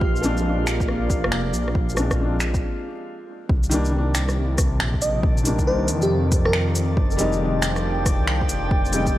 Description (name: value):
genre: future garage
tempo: 138 BPM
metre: 4/4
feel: swing 64% on 16ths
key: C minor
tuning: A4 = 440 Hz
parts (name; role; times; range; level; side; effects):
- felt-muted upright piano; accompaniment; 0.0-9.2 s; Eb3 to Eb4; -27 LUFS; left 2 dB; sidechain pumping, analog delay
- warbly tape-like pad; sustained chords; 0.0-9.2 s; C3 to G5; -29 LUFS; right 1 dB; chorus, built-in reverb, sidechain pumping
- swelling detuned saw bass; bass; 0.0-9.2 s; F1 to F2; -24 LUFS; equal; sidechain pumping
- electronic kick drum; drums; 0.0-9.1 s; none; -22 LUFS; equal; overdrive, studio reverb
- drifting glass-harmonics texture; texture; 0.0-9.2 s; D4 to F5; -34 LUFS; left 1 dB; chorus, built-in reverb
- organic electronic drum kit; drums; 0.2-9.1 s; finger snaps, hi-hat, rim click, shaker; -27 LUFS; equal; overdrive, studio reverb
- bell-like FM electric piano; melody; 5.0-6.8 s; G4 to Eb5; -28 LUFS; right 1 dB; chorus, analog delay
room: light reverb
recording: vinyl crackle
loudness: -19 LUFS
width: side -14 dB against mid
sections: 0.0-3.5 A section; 3.5-9.2 B section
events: break 2.6-3.5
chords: 0.0 Bb7; 3.5 Cm9; 7.0 Fm9